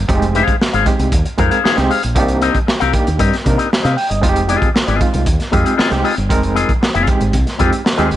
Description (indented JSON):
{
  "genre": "funk",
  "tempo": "116 BPM",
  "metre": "4/4",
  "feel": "straight",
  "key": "F dorian",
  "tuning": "A4 = 440 Hz",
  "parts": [
    { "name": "fingered electric bass with an envelope filter", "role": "bass", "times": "0.0-8.2 s", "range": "F1 to C3", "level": "-18 LUFS", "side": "equal", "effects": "none" },
    { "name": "overdriven reed electric piano", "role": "stabs", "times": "0.1-8.2 s", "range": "G3 to G5", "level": "-20 LUFS", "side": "right 3 dB", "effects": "fast tremolo" },
    { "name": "crunchy breakbeat drum kit", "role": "drums", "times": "0.1-8.2 s", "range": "hi-hat, kick drum, snare drum", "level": "-17 LUFS", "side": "equal", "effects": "none" },
    { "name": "electric guitar with an envelope filter", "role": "accompaniment", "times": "0.3-8.1 s", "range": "C4 to F5", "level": "-18 LUFS", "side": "left 6 dB", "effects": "none" }
  ],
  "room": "little or no reverb",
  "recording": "nothing above 10.7 kHz",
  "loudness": "-12 LUFS",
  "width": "side -13 dB against mid",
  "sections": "0.0-8.2 A section",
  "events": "none",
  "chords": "0.0 Fm7; 2.2 Cm7; 4.2 Fm7",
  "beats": "| 0.08 0.60 1.12 1.64 | 2.16 2.67 3.19 3.71 | 4.23 4.75 5.26 5.78 | 6.30 6.82 7.33 7.85"
}